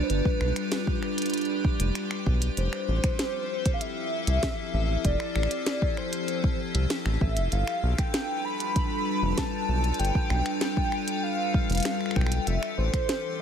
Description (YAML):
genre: IDM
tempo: 97 BPM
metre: 4/4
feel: straight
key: unclear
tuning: A4 = 439 Hz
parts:
  - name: warbly nostalgic lead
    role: melody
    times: 0.0-13.4 s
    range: B4 to B5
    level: -32 LUFS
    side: equal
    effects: analog chorus, ping-pong delay
  - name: icy glass pad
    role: sustained chords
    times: 0.0-13.4 s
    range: E3 to B4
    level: -30 LUFS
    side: left 1 dB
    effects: chorus, built-in reverb
  - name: round analog bass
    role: bass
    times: 0.0-12.9 s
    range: F1 to C2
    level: -26 LUFS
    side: equal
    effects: none
  - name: glitchy drum kit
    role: drums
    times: 0.1-13.2 s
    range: finger snaps, hi-hat, snare drum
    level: -32 LUFS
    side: equal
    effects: none
  - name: electronic kick drum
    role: drums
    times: 0.3-13.1 s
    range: none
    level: -27 LUFS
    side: equal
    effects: none
room: little or no reverb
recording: none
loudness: -24 LUFS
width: side -8 dB against mid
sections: 0.0-13.4 A section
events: none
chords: 0.0 G7; 2.6 Fmaj7; 7.5 G7; 12.5 Fmaj7